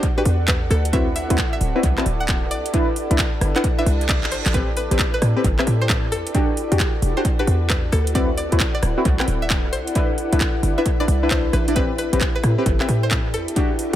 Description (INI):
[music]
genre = UK garage, two-step garage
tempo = 133 BPM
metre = 4/4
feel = swing 65% on 16ths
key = A dorian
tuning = A4 = 445 Hz
[part]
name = string-like resonator pluck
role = melody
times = 0.0-13.5 s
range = A4 to A5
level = -29 LUFS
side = equal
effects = chorus, analog delay
[part]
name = soft string machine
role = sustained chords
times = 0.0-14.0 s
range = C4 to B4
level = -34 LUFS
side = equal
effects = none
[part]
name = electronic kick drum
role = drums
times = 0.0-13.7 s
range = none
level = -22 LUFS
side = equal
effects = none
[part]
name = house drum kit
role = drums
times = 0.0-14.0 s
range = handclaps, hi-hat, rim click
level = -26 LUFS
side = right 1 dB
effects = dub echo
[part]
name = warbly tape-like pad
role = texture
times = 0.0-14.0 s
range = E4 to G5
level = -29 LUFS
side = left 1 dB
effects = chorus, built-in reverb, sidechain pumping
[part]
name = deep mellow chord stab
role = stabs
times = 0.2-14.0 s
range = C4 to D5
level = -24 LUFS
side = left 1 dB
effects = chorus, analog delay
[part]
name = short 808-style bass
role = bass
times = 0.3-14.0 s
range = D1 to A2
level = -21 LUFS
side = equal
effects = sidechain pumping
[part]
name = reverse cymbal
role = sound effects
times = 3.8-4.5 s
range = none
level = -33 LUFS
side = right 7 dB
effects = none
[sound]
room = light reverb, digital ambience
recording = echo-heavy mix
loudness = -17 LUFS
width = side -12 dB against mid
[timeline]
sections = 0.0-14.0 A section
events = reverse cymbal 3.8-4.5; drum fill 4.2-4.5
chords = 0.0 Em9; 0.9 D13; 2.5 Cmaj9; 4.5 Am9; 6.1 Em9; 8.2 D13; 9.7 Cmaj9; 11.8 Am9; 13.3 Em9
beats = 0.03 0.48 | 0.93 1.38 1.83 2.29 | 2.74 3.19 3.64 4.09 | 4.54 4.99 5.44 5.89 | 6.34 6.80 7.25 7.70 | 8.15 8.60 9.05 9.50 | 9.95 10.40 10.86 11.31 | 11.76 12.21 12.66 13.11 | 13.56